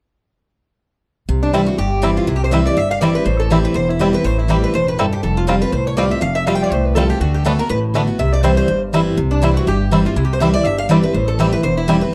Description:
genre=bluegrass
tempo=244 BPM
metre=4/4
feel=swing 55% on 8ths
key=C major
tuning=A4 = 440 Hz
part: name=picked steel-string acoustic guitar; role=accompaniment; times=1.3-12.1 s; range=E2 to F#4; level=-20 LUFS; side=equal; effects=none
part: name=upright bass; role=bass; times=1.3-12.0 s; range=E1 to D2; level=-22 LUFS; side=equal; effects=none
part: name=picked acoustic archtop guitar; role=melody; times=1.4-12.1 s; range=D4 to G5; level=-25 LUFS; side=equal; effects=tape echo
part: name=lap resonator guitar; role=second line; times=1.4-12.1 s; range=D4 to G5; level=-27 LUFS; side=equal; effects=none
part: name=bluegrass banjo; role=melody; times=1.5-11.9 s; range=G3 to F4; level=-22 LUFS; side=equal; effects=none
room=light reverb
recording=dry, close 1970s-style studio recording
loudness=-16 LUFS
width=mono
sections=1.3-9.2 A section; 9.2-12.1 A section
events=none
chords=1.3 C; 3.3 Am7; 5.2 Fadd9; 7.2 D6; 8.2 C; 11.1 Am7

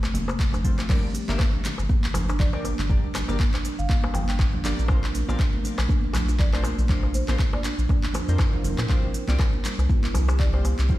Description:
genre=afro house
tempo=120 BPM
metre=4/4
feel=swing 56% on 16ths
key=G dorian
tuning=A4 = 443 Hz
part: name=buzzing kalimba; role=arpeggios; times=0.0-11.0 s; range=D3 to C5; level=-32 LUFS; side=right 1 dB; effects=sidechain pumping, ping-pong delay
part: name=afro-pop drum kit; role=drums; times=0.0-11.0 s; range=crash cymbal, handclaps, hi-hat, shaker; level=-33 LUFS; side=equal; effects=studio reverb
part: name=congas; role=percussion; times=0.0-11.0 s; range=none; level=-33 LUFS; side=right 2 dB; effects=none
part: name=darbuka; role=percussion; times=0.0-10.8 s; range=none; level=-36 LUFS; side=left 2 dB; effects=none
part: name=round analog bass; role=bass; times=0.1-11.0 s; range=F1 to Bb2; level=-24 LUFS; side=equal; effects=tube saturation, sidechain pumping
part: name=electronic kick drum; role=drums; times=0.4-11.0 s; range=none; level=-22 LUFS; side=equal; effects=studio reverb
part: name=warm analog keys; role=stabs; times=0.6-11.0 s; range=G3 to E5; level=-37 LUFS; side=left 4 dB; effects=chorus, sidechain pumping, ping-pong delay
part: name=marimba with medium mallets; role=melody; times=2.4-10.6 s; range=C5 to G5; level=-38 LUFS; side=equal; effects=ping-pong delay
room=small room ambience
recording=played on a big sound system in a bare room, large studio reverb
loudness=-21 LUFS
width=side -16 dB against mid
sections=0.9-11.0 A section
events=drop 0.9-11.0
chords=0.0 F; 0.9 Gm; 4.9 Bbadd9; 8.9 Csus4

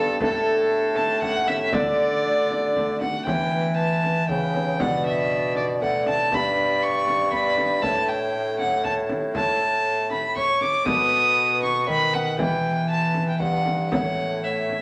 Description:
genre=classical, renaissance-style consort dance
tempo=118 BPM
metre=3/4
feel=straight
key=unclear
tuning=A4 = 440 Hz
part: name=mellow alto recorder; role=melody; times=0.0-14.8 s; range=A4 to A5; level=-30 LUFS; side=equal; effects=none
part: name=warm violin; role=second line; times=0.0-14.8 s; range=A4 to D#6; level=-26 LUFS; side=equal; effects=none
part: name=concert harp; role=accompaniment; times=0.0-14.8 s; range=G2 to C#5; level=-31 LUFS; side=equal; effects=none
part: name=clear bassoon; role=bass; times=0.0-14.8 s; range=G2 to E3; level=-30 LUFS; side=equal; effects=none
part: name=frame drum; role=percussion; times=0.2-14.8 s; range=none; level=-34 LUFS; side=equal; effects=none
room=wet stone room reverb, RT60 1.2 s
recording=none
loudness=-23 LUFS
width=mono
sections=0.0-3.3 A section; 3.3-14.8 B section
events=none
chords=0.2 A7sus4; 0.7 A7; 1.7 D; 3.3 Em; 4.8 Bm; 6.3 G; 7.8 A; 10.9 B7; 12.4 Em; 13.9 A

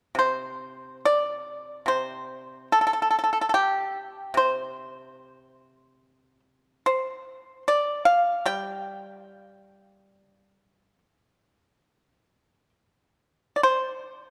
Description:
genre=chinese traditional, Chinese solo plucked strings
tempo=66-74 BPM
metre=4/4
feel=rubato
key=unclear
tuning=A4 = 440 Hz
part: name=pipa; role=solo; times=0.1-14.3 s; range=C3 to G5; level=-25 LUFS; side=equal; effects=none
room=moderate concert hall reverb, RT60 2.2 s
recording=dark, warm production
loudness=-25 LUFS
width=mono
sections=0.1-13.6 A section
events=none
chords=none

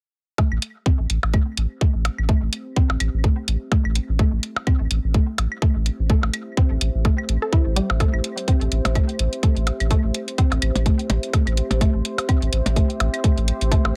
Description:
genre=minimal techno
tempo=126 BPM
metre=4/4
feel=swing 56% on 16ths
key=A minor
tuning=A4 = 440 Hz
part: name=resonant blip pluck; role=riff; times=0.4-13.8 s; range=G3 to A4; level=-31 LUFS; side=equal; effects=chorus, sidechain pumping, digital delay
part: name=electronic kick drum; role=drums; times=0.4-13.8 s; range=none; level=-20 LUFS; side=equal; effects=none
part: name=percussion blips and claves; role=percussion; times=0.4-13.9 s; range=none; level=-28 LUFS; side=equal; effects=dub echo
part: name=deep dark ambient pad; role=texture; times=1.6-14.0 s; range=G4 to E5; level=-35 LUFS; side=equal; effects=chorus, built-in reverb, sidechain pumping
part: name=saturated sub bass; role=bass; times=0.5-13.9 s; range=A1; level=-24 LUFS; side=equal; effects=sidechain pumping
part: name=electronic hi-hat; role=drums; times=0.6-13.8 s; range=none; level=-30 LUFS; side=equal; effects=none
room=light reverb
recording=none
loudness=-21 LUFS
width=mono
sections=0.4-14.0 A section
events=none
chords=0.4 Am7

